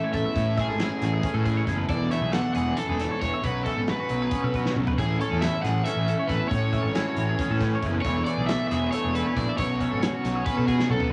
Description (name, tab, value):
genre	math rock and midwest emo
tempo	273 BPM (eighths)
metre	7/8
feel	straight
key	A major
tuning	A4 = 440 Hz
part	cranked stack guitar	melody	0.0-11.1 s	G#4 to F#5	-33 LUFS	equal	overdrive, cassette tape
part	twangy electric guitar	accompaniment	0.0-11.1 s	E2 to F#4	-35 LUFS	equal	tremolo, cassette tape
part	twelve-string electric guitar	arpeggios	0.0-11.1 s	F#4 to E5	-37 LUFS	equal	cassette tape
part	crunchy overdriven guitar	riff	0.0-11.1 s	A2 to A4	-33 LUFS	equal	spring reverb, cassette tape
part	fuzz fingered electric bass	bass	0.1-11.1 s	E1 to B2	-30 LUFS	equal	overdrive
part	loose indie drum kit	drums	0.1-11.1 s	hi-hat, kick drum, snare drum, toms	-34 LUFS	equal	cassette tape
room	studio ambience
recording	home recording on cassette, small room ambience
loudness	-25 LUFS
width	mono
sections	0.0-11.1 A section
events	drum fill 4.6-5.0, 10.8-11.1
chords	0.0 Amaj7; 1.9 E7sus4; 3.4 Bsus2; 5.0 Amaj7; 8.0 E7sus4; 9.6 Bsus2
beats	0.14 | 0.35 0.58 0.80 1.02 1.24 1.46 1.68 | 1.90 2.12 2.34 2.56 2.78 3.00 3.22 | 3.44 3.66 3.88 4.10 4.32 4.54 4.75 | 4.97 5.20 5.41 5.63 5.85 6.07 6.29 | 6.51 6.73 6.95 7.17 7.39 7.61 7.83 | 8.05 8.27 8.48 8.70 8.92 9.14 9.36 | 9.58 9.80 10.02 10.24 10.46 10.68 10.90